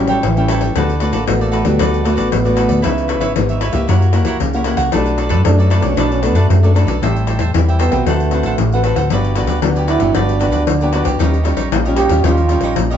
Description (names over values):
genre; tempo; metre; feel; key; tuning
samba and choro; 115 BPM; 4/4; straight; D major; A4 = 440 Hz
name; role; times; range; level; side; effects
growling trombone; melody; 0.0-13.0 s; F#3 to G4; -20 LUFS; right 4 dB; none
breathy trombone; second line; 0.0-0.8 s; E3 to F#3; -23 LUFS; left 3 dB; none
cavaquinho; accompaniment; 0.0-13.0 s; D4 to G5; -23 LUFS; right 3 dB; none
nylon-string guitar; accompaniment; 0.0-13.0 s; F#2 to B4; -19 LUFS; left 2 dB; none
hollow-body short-scale fingered electric bass; bass; 0.0-13.0 s; G1 to F#2; -16 LUFS; equal; none
pandeiro; percussion; 0.1-13.0 s; none; -21 LUFS; left 6 dB; none
room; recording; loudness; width
light reverb; band playing live in one room, nothing above 8.0 kHz; -12 LUFS; side -9 dB against mid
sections
0.8-13.0 A section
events
trombone solo 0.8-13.0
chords
0.0 A7; 0.8 D6; 2.8 C#m9; 3.9 F#7b9; 4.9 Bm7; 7.0 Am7; 8.1 D6; 9.1 Gmaj7; 11.2 Eb9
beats
0.24 | 0.76 1.28 1.80 2.33 | 2.85 3.37 3.89 4.41 | 4.93 5.46 5.98 6.50 | 7.02 7.55 8.07 8.59 | 9.11 9.64 10.16 10.68 | 11.21 11.73 12.25 12.77